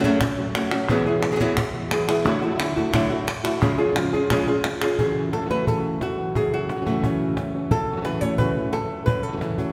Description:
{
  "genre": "flamenco",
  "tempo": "176 BPM",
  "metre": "4/4",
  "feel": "straight",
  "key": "F# minor",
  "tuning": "A4 = 445 Hz",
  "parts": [
    { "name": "flamenco guitar", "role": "melody", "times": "0.0-9.7 s", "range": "F#2 to C#5", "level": "-25 LUFS", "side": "equal", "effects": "none" },
    { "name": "flamenco guitar", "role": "stabs", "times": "0.0-9.7 s", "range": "E2 to F#4", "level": "-30 LUFS", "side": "equal", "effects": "none" },
    { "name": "cajon", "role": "percussion", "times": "0.0-9.7 s", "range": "none", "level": "-31 LUFS", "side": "equal", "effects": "none" },
    { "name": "palmas hand claps", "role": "percussion", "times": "0.2-5.0 s", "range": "none", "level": "-31 LUFS", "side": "equal", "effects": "none" }
  ],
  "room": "wet church reverb, RT60 2.9 s",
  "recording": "recorded in a church or concert hall",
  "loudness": "-23 LUFS",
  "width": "mono",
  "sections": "0.0-5.0 A section; 5.0-9.7 B section",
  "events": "none",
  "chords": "0.0 F#m; 0.9 Eadd9; 2.3 Dadd9; 3.6 C#; 5.0 F#m7"
}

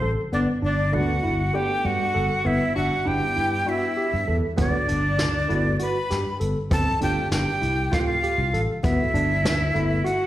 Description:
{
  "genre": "progressive instrumental, band music in an uneven meter",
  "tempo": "197 BPM (eighths)",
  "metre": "7/8",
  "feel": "straight",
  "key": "G major",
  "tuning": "A4 = 439 Hz",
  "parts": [
    { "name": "breathy bright jazz flute", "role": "melody", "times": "0.0-10.3 s", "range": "C5 to B5", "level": "-26 LUFS", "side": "right 1 dB", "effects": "slapback echo" },
    { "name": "warm alto saxophone", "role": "second line", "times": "0.0-10.3 s", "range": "C4 to B4", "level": "-31 LUFS", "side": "left 1 dB", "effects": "slapback echo" },
    { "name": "bright tine electric piano", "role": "arpeggios", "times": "0.0-10.2 s", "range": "G3 to A4", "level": "-28 LUFS", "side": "right 1 dB", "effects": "auto-pan, slapback echo" },
    { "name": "sustaining fretless electric bass", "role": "bass", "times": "0.0-10.0 s", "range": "G1 to G2", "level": "-25 LUFS", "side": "equal", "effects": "none" },
    { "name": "warm baby grand piano", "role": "accompaniment", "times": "0.9-10.0 s", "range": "A3 to G4", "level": "-32 LUFS", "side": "left 2 dB", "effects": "slapback echo" },
    { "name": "jazz brush drum kit", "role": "drums", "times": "4.6-10.2 s", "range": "hi-hat, kick drum, snare drum", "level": "-26 LUFS", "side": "equal", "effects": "none" }
  ],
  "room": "light reverb",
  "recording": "live gig heard through the venue's PA, recital hall reverb",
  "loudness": "-20 LUFS",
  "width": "side -13 dB against mid",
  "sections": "0.0-10.3 A section",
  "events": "none",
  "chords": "0.3 Gmaj13; 6.7 F/G; 8.8 Gmaj13"
}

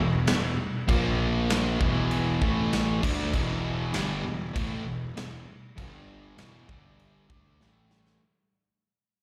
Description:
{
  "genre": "classic rock",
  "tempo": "98 BPM",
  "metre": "4/4",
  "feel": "straight",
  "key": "E minor",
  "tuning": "A4 = 442 Hz",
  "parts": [
    { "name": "overdriven electric guitar", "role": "riff", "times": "0.0-8.2 s", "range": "E2 to D4", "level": "-34 LUFS", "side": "equal", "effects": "slapback echo" },
    { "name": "sludgy distorted guitar", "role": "riff", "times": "0.0-8.2 s", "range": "E2 to D4", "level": "-34 LUFS", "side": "equal", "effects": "overdrive" },
    { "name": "fuzz picked electric bass", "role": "bass", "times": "0.0-8.2 s", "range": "E1 to D2", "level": "-34 LUFS", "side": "equal", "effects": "overdrive" },
    { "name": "huge arena drum kit", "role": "drums", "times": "0.3-8.2 s", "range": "crash cymbal, kick drum, snare drum", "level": "-32 LUFS", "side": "equal", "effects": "none" }
  ],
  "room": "light reverb",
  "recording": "live gig heard through the venue's PA, recital hall reverb",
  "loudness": "-27 LUFS",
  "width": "mono",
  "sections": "0.0-8.2 A section",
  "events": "fade-out 0.0-8.2; drum fill 7.6-8.2",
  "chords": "0.0 E5; 0.9 A#5; 1.8 E5; 2.4 A5; 3.0 Em; 5.8 G5; 6.4 E5; 6.7 G5; 7.3 D5; 7.6 A5"
}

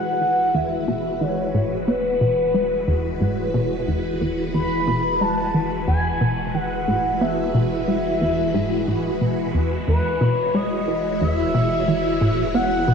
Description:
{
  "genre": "ambient",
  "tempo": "90 BPM",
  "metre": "4/4",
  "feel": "straight",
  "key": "E major",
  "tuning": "A4 = 441 Hz",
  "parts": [
    { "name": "expressive synth lead", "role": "melody", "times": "0.0-12.9 s", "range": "B4 to B5", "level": "-24 LUFS", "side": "left 1 dB", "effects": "wide subtle chorus, ping-pong delay" },
    { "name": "phased string machine", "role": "sustained chords", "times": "0.0-12.9 s", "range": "E3 to C#5", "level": "-24 LUFS", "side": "equal", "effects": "ensemble chorus, phaser" },
    { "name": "plucky analog bass", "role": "riff", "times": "0.0-12.9 s", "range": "E2 to B3", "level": "-23 LUFS", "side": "equal", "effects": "analog chorus, ping-pong delay" },
    { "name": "warm sub bass", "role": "bass", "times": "0.0-12.9 s", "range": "E1", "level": "-37 LUFS", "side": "equal", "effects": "none" },
    { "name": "wind-like tuned noise texture", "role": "texture", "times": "0.6-12.9 s", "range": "B4 to F#6", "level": "-46 LUFS", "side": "left 3 dB", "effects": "none" }
  ],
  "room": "wet concert hall reverb, RT60 1.9 s, digital ambience",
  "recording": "dark, warm production",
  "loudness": "-19 LUFS",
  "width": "side -6 dB against mid",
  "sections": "0.0-12.9 A section",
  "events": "fade-in on sub bass 0.0-12.9; filter sweep on analog synth bass 0.0-12.9",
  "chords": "0.0 Eadd9"
}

